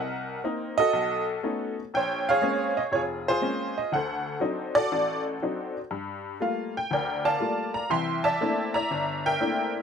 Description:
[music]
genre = solo jazz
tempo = 120 BPM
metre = 4/4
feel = swing 69% on 8ths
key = unclear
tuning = A4 = 442 Hz
[part]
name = honky-tonk upright piano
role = solo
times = 0.0-9.8 s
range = F1 to C6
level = -25 LUFS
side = equal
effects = none
[sound]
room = light reverb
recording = none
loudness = -25 LUFS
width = side -7 dB against mid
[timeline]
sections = 0.0-9.8 A section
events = none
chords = 0.0 Cm7b5; 0.9 B9; 1.9 Bbm9; 3.9 D7b9; 5.9 Gm9; 7.9 C13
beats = 0.43 0.93 1.43 | 1.93 2.42 2.92 3.42 | 3.92 4.42 4.92 5.41 | 5.91 6.41 6.91 7.41 | 7.91 8.41 8.91 9.41

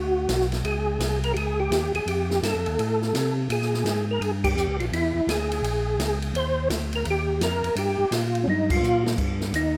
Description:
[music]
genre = soul jazz organ trio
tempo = 168 BPM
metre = 4/4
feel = swing 64% on 8ths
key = unclear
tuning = A4 = 442 Hz
[part]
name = percussive tonewheel organ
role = melody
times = 0.0-9.8 s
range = Db4 to C5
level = -28 LUFS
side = equal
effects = slow rotary speaker, chorus vibrato
[part]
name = tonewheel organ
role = bass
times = 0.0-9.8 s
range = Bb1 to C3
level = -29 LUFS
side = equal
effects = overdrive, chorus vibrato, slow rotary speaker
[part]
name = open jazz drum kit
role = drums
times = 0.3-9.6 s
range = crash cymbal, hi-hat, kick drum, ride cymbal, snare drum, toms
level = -32 LUFS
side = equal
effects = none
[sound]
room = light reverb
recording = none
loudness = -25 LUFS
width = mono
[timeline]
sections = 0.0-9.2 A section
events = band accent 4.4, 8.7; drum fill 8.5-9.2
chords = 0.0 D; 0.6 Db5; 2.1 F7; 3.5 Bbm7; 4.9 E7#11; 6.3 Ebmaj7; 7.8 Gm7; 9.2 N.C.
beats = 0.29 | 0.64 1.00 1.36 1.71 | 2.07 2.43 2.78 3.14 | 3.50 3.85 4.21 4.56 | 4.92 5.28 5.63 5.99 | 6.34 6.70 7.05 7.41 | 7.77 8.12 8.48 8.83 | 9.19 9.54

